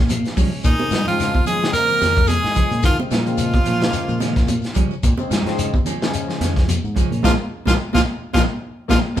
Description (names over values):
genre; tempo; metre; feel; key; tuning
afrobeat; 109 BPM; 4/4; swing 55% on 16ths; Bb minor; A4 = 440 Hz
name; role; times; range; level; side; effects
barky tine electric piano; accompaniment; 0.0-9.2 s; Db3 to F5; -29 LUFS; left 4 dB; phaser
electric guitar at the edge of break-up; arpeggios; 0.0-9.2 s; Db3 to Bb3; -27 LUFS; left 6 dB; none
semi-hollow electric guitar; stabs; 0.0-9.2 s; F3 to Db4; -28 LUFS; right 7 dB; tremolo
fingered electric bass; bass; 0.0-9.2 s; Bb1 to G3; -23 LUFS; equal; none
crunchy breakbeat drum kit; drums; 0.1-9.2 s; hi-hat, kick drum, snare drum; -20 LUFS; equal; none
congas; percussion; 0.1-9.2 s; none; -28 LUFS; right 3 dB; none
shekere; percussion; 0.1-9.2 s; none; -30 LUFS; left 4 dB; none
edgy tenor saxophone; melody; 0.6-9.0 s; Eb4 to Bb4; -21 LUFS; right 1 dB; none
bright trumpet; second line; 0.6-9.2 s; F4 to Bb4; -34 LUFS; right 3 dB; none
mellow trombone section; second line; 0.7-9.2 s; Eb3 to Bb3; -32 LUFS; equal; none
room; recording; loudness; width
moderate large studio reverb, RT60 0.9 s; band playing live in one room; -16 LUFS; side -11 dB against mid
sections
0.0-9.2 A section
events
tine electric piano fill 0.0-0.6; band accent 7.2-9.2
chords
0.0 Bbm7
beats
0.09 | 0.64 1.19 1.74 2.29 | 2.84 3.39 3.94 4.49 | 5.04 5.59 6.14 6.69 | 7.24 7.79 8.35 8.90